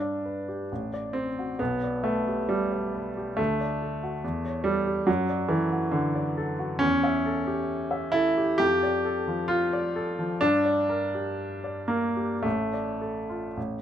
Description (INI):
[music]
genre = classical, romantic character piece for solo piano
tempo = 53-72 BPM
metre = 2/4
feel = rubato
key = D minor from 6.8 s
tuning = A4 = 440 Hz
[part]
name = clear baby grand piano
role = solo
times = 0.0-13.8 s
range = A1 to E5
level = -25 LUFS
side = equal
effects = none
[sound]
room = light reverb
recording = close, detailed microphones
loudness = -25 LUFS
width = side -10 dB against mid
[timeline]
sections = 0.0-13.8 A section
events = none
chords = 0.0 G; 0.7 D7/A; 1.6 G/B; 3.4 D; 4.2 A7/E; 5.1 D/F#; 6.8 A7/E; 8.6 Dm/F; 10.4 Gm; 12.4 Dm/A